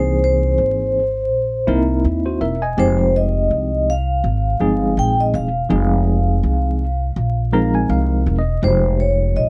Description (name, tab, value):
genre	hip hop, jazz-hop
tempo	82 BPM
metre	4/4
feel	swing 58% on 16ths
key	F minor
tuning	A4 = 440 Hz
part	vibraphone with medium mallets	melody	0.0-9.5 s	C5 to G5	-23 LUFS	equal	none
part	mellow tine electric piano	accompaniment	0.0-9.5 s	C3 to Bb5	-22 LUFS	equal	medium tremolo
part	upright bass	bass	0.0-9.5 s	E1 to D#2	-21 LUFS	equal	none
room	light reverb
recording	dark, warm production, vinyl crackle, nothing above 10.6 kHz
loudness	-18 LUFS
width	mono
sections	0.0-8.6 A section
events	tine electric piano fill 7.2-8.6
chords	0.0 C7alt; 2.8 Fm9